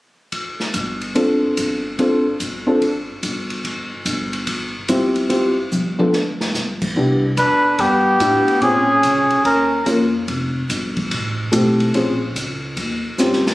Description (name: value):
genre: jazz, small-group swing and bop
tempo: 145 BPM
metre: 4/4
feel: swing 66% on 8ths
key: unclear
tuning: A4 = 438 Hz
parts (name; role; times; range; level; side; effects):
- open jazz drum kit; drums; 0.3-13.5 s; crash cymbal, hi-hat, kick drum, ride cymbal, snare drum, toms; -24 LUFS; equal; none
- upright bass; bass; 0.7-13.5 s; F1 to Bb2; -26 LUFS; equal; none
- warm baby grand piano; accompaniment; 1.2-13.4 s; A3 to Bb4; -17 LUFS; equal; none
- trumpet with cup mute; melody; 7.4-9.8 s; G4 to B4; -15 LUFS; equal; none
- breathy trumpet; second line; 7.4-9.8 s; B3 to D4; -21 LUFS; right 2 dB; none
room: light reverb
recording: recorded on a phone in the room, studio reverb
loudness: -16 LUFS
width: side -18 dB against mid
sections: 0.3-7.0 A section; 7.0-13.5 B section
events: drum fill 5.7-6.6, 13.2-13.5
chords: 0.3 G7sus4; 3.6 Dm11/G (rootless); 6.1 N.C.; 7.0 Cmaj9; 8.6 Bbm7; 9.5 Ebsus2; 10.3 Fmaj9; 11.9 Bbm9; 12.8 Eb13